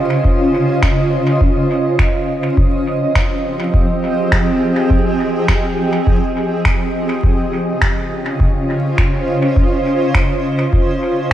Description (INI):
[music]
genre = ambient dub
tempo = 103 BPM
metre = 4/4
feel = straight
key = unclear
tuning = A4 = 440 Hz
[part]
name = granular cloud pad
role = sustained chords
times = 0.0-11.3 s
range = Db3 to Eb5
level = -16 LUFS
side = equal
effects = built-in reverb
[part]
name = electronic kick drum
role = drums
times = 0.2-10.8 s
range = none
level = -16 LUFS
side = equal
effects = none
[part]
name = electronic finger snaps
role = drums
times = 0.8-11.3 s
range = none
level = -23 LUFS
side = equal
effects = dub echo
[sound]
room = light reverb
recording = vinyl crackle, nothing above 10.8 kHz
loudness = -13 LUFS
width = side -12 dB against mid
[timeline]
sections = 0.0-11.3 A section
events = none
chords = 0.0 Dbmaj9; 2.6 Fm9; 7.2 Dbmaj9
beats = | 0.25 0.83 1.41 1.99 | 2.58 3.16 3.74 4.32 | 4.91 5.49 6.07 6.65 | 7.24 7.82 8.40 8.98 | 9.57 10.15 10.73 11.31